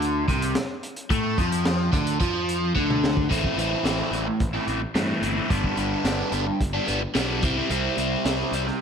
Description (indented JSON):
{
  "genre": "psychedelic rock",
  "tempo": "109 BPM",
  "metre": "4/4",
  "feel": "straight",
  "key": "A minor",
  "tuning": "A4 = 439 Hz",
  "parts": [
    { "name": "overdriven electric guitar", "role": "riff", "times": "0.0-8.8 s", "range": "G2 to E4", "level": "-24 LUFS", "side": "equal", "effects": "phaser" },
    { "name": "fuzz picked electric bass", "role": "bass", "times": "0.0-8.7 s", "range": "G1 to A2", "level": "-28 LUFS", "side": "equal", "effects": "overdrive" },
    { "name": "crunchy breakbeat drum kit", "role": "drums", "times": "0.0-8.7 s", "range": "hi-hat, kick drum, snare drum, toms", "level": "-27 LUFS", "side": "equal", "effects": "none" }
  ],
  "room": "moderate plate reverb, RT60 2.6 s",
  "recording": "dreamy mix soaked in reverb",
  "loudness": "-22 LUFS",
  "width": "side -7 dB against mid",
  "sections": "0.0-3.3 A section; 3.3-8.8 B section",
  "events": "drum fill 2.8-3.3",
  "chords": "0.0 D5; 3.3 Am; 5.5 G; 7.4 C",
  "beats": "0.01 0.55 | 1.10 1.65 2.20 2.75 | 3.30 3.85 4.40 4.95 | 5.50 6.06 6.61 7.16 | 7.71 8.26"
}